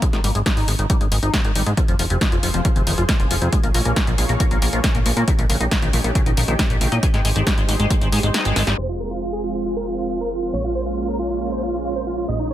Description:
uplifting trance; 137 BPM; 4/4; straight; F minor; A4 = 440 Hz
liquid acid bass; arpeggios; 0.0-8.7 s; Bb2 to F4; -25 LUFS; left 2 dB; lush chorus, sidechain pumping, digital delay
electronic kick drum; drums; 0.0-8.0 s; -20 LUFS; equal
punchy analog drum machine; drums; 0.0-8.8 s; hi-hat, snare drum; -24 LUFS; equal; low-pass filter on hats, low-pass filter on snare, low-pass filter on room
plucky analog bass; bass; 0.1-12.5 s; F1 to Bb2; -22 LUFS; equal; tube saturation, sidechain pumping
analog string pad; sustained chords; 1.8-12.5 s; Eb3 to Db5; -28 LUFS; right 1 dB; ensemble chorus, sidechain pumping
dense compressed supersaw; melody; 8.8-12.5 s; Eb4 to Eb5; -24 LUFS; right 1 dB; sidechain pumping, low-pass filter, digital delay
digital ambience; low-pass filter; -17 LUFS; side -12 dB against mid
0.0-8.8 A section; 8.8-12.5 B section
filter sweep on acid bass 0.0-8.8; kick drops out 8.3-8.8; drum fill 8.6; filter sweep on supersaw synth 8.8-12.5; filter sweep 8.8-12.5
0.0 Ab5; 1.8 Fm; 3.5 Bbm7; 5.3 Eb7/Bb; 7.0 Abmaj7; 8.8 Fm; 10.5 Bbm7

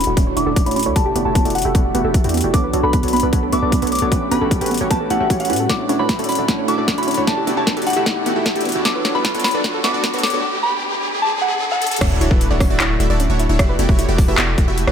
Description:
future bass; 152 BPM; 4/4; half-time; D major; A4 = 441 Hz
soft synth bell; melody; 0.0-12.0 s; F#5 to D6; -22 LUFS; left 2 dB; chorus, sidechain pumping, low-pass filter, ping-pong delay
ethereal airy pad; sustained chords; 0.0-10.4 s; D3 to A4; -29 LUFS; left 2 dB; ensemble chorus, built-in reverb, sidechain pumping
soft round pluck; arpeggios; 0.0-14.9 s; B3 to D5; -26 LUFS; right 4 dB; chorus, sidechain pumping, ping-pong delay
supersaw stab; riff; 0.0-14.9 s; A3 to F#5; -22 LUFS; right 2 dB; sidechain pumping, low-pass filter
long sustained 808-style bass; bass; 0.0-14.9 s; D1 to A2; -23 LUFS; equal; sidechain pumping
trap drum kit; drums; 0.0-14.9 s; crash cymbal, handclaps, hi-hat, rim click, snare drum; -23 LUFS; left 1 dB; overdrive
riser and sub drop; sound effects; 0.0-13.6 s; -27 LUFS; equal
electronic kick drum; drums; 0.2-14.7 s; -18 LUFS; equal; overdrive
light reverb, digital ambience; high-pass filter; -15 LUFS; side -8 dB against mid
0.0-12.0 A section; 12.0-14.9 B section
build-up 0.0-12.0; riser 0.0-12.0; filter sweep on supersaw synth 0.0-12.0; filter sweep on synth bell 0.0-12.0; filter sweep 0.0-12.0; drum fill 5.7-10.4, 11.8; drop 12.0-14.9; impact 12.0-13.6
0.0 Dmaj9; 1.0 Em11; 2.5 Bm9; 4.1 A13; 5.7 Dmaj9; 7.3 Em11; 8.9 Bm9; 10.4 N.C.; 12.0 Dmaj9; 13.6 Em11

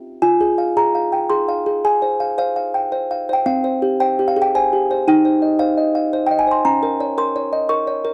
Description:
classical, lullaby for music box; 112 BPM; 3/4; rubato; F minor; A4 = 440 Hz
music box; solo; 0.0-8.1 s; C4 to Db6; -18 LUFS; equal
light reverb; dark, warm production; -18 LUFS; mono
0.2-8.1 A section
0.2 Fm; 1.8 Fm/Ab; 3.5 C5; 5.1 Cm/Eb; 6.7 Bbm/Db

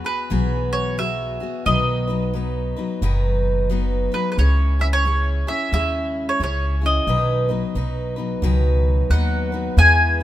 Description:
honky-tonk and classic country; 89 BPM; 4/4; swing 62% on 8ths; A4 = 440 Hz
mandolin; melody; 0.0-10.2 s; B4 to G#5; -21 LUFS; equal
picked steel-string acoustic guitar; accompaniment; 0.0-10.2 s; B2 to B4; -25 LUFS; left 2 dB
upright bass; bass; 0.3-10.2 s; F#1 to E2; -20 LUFS; equal
light reverb; minimal, uncompressed stereo recording; -18 LUFS; side -13 dB against mid
0.0-9.8 A section
0.0 Eadd9; 1.7 B; 4.4 C#m; 7.1 B

